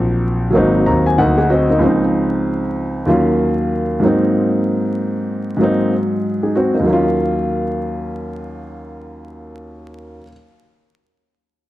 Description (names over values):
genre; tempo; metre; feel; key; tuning
hip hop; 95 BPM; 4/4; swing 61% on 16ths; Eb dorian; A4 = 440 Hz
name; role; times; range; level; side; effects
warm upright piano; accompaniment; 0.0-10.3 s; Db2 to Bb5; -16 LUFS; equal; none
dark concert grand piano; bass; 0.0-1.8 s; Ab1 to Eb2; -17 LUFS; left 1 dB; none
room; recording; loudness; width
moderate echo chamber reverb, RT60 2.1 s; dark, warm production, vinyl crackle; -14 LUFS; side -15 dB against mid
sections
0.0-6.9 A section; 6.9-9.4 B section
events
upright piano fill 0.6-1.8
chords
0.0 Ab9; 1.8 Dbmaj9; 3.1 Ebm9; 4.0 Ab9; 6.9 Ebm9